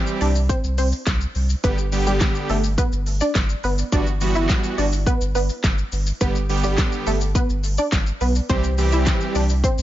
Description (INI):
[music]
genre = dance-pop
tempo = 105 BPM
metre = 4/4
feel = straight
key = G major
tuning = A4 = 440 Hz
[part]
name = big bright polysynth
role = accompaniment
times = 0.0-9.4 s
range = D3 to G4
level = -25 LUFS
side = right 2 dB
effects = sidechain pumping
[part]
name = pop drum kit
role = drums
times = 0.1-9.8 s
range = handclaps, hi-hat, kick drum, shaker, snare drum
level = -23 LUFS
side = equal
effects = none
[part]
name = wide unison pluck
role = melody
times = 0.2-9.8 s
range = G3 to E5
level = -25 LUFS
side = right 1 dB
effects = tape echo
[part]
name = warm sub bass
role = bass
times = 0.2-9.8 s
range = G1 to C2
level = -21 LUFS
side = equal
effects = sidechain pumping
[sound]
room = digital ambience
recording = nothing above 7.5 kHz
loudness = -18 LUFS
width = side -13 dB against mid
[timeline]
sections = 0.0-9.8 A section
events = none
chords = 0.0 C; 1.6 G; 3.9 Emadd9/G; 6.2 G; 8.5 C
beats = 0.50 1.07 | 1.64 2.21 2.78 3.35 | 3.92 4.50 5.07 5.64 | 6.21 6.78 7.35 7.92 | 8.50 9.07 9.64